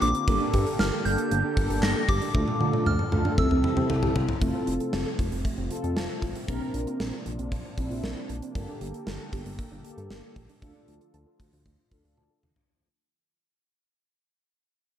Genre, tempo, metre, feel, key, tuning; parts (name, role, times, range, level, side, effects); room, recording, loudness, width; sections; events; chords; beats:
synth-pop; 116 BPM; 4/4; straight; A4 = 440 Hz
soft synth bell; melody; 0.0-4.1 s; D6 to Bb6; -30 LUFS; left 1 dB; chorus, phaser, tape echo
sweeping resonant pad; sustained chords; 0.0-12.7 s; C3 to A4; -36 LUFS; left 2 dB; lush chorus
soft round pluck; arpeggios; 0.0-12.7 s; A3 to A5; -35 LUFS; right 5 dB; chorus, tape echo
chorused synth bass; bass; 0.0-12.6 s; F1 to D3; -30 LUFS; equal
gated 80s drum kit; drums; 0.0-12.7 s; handclaps, hi-hat, kick drum, snare drum, toms; -29 LUFS; equal
mellow synth brass; accompaniment; 0.3-12.4 s; A3 to Bb4; -31 LUFS; equal; chorus
moderate plate reverb, RT60 1.5 s; dark, warm production; -24 LUFS; side -10 dB against mid
0.0-4.4 A section; 4.4-12.7 B section
drum fill 2.3-4.4, 12.2-12.7; fade-out 4.4-12.7
0.3 Gmadd9; 2.3 Dm; 3.4 C6; 4.4 F; 6.5 Bbadd9; 8.6 Gmadd9; 10.6 Dm
| 0.28 0.79 1.31 1.83 | 2.35 2.86 3.38 3.90 | 4.42 4.93 5.45 5.97 | 6.48 7.00 7.52 8.04 | 8.55 9.07 9.59 10.11 | 10.62 11.14 11.66 12.17